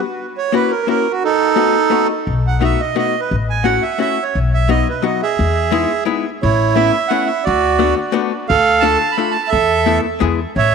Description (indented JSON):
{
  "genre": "musette waltz",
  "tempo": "174 BPM",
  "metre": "3/4",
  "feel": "straight",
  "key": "E major, A major from 6.4 s",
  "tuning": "A4 = 440 Hz",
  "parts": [
    { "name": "archtop guitar, miked and amplified", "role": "accompaniment", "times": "0.0-10.4 s", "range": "F#3 to A4", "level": "-20 LUFS", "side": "left 12 dB", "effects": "none" },
    { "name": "accordion", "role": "melody", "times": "0.4-10.7 s", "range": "D#4 to B5", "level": "-16 LUFS", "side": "right 6 dB", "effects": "tape echo" },
    { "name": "upright bass", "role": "bass", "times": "2.3-10.7 s", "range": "A1 to E2", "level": "-18 LUFS", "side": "left 2 dB", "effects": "transformer saturation" }
  ],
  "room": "moderate echo chamber reverb, RT60 2.1 s",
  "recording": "1960s-style stereo with parts hard left and right",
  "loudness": "-14 LUFS",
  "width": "side -6 dB against mid",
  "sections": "0.0-6.4 A section; 6.4-10.7 B section",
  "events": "none",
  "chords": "0.2 F#7; 1.2 B7; 3.3 F#m7/A; 4.3 B; 5.4 Emaj7; 6.4 Aadd9; 7.5 D6; 8.5 Dm; 9.5 Esus4; 10.2 E",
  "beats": "| 0.20 0.54 0.89 | 1.23 1.58 1.92 | 2.27 2.62 2.96 | 3.31 3.65 4.00 | 4.34 4.69 5.03 | 5.38 5.72 6.07 | 6.42 6.77 7.11 | 7.46 7.80 8.15 | 8.49 8.83 9.17 | 9.52 9.86 10.21 | 10.55"
}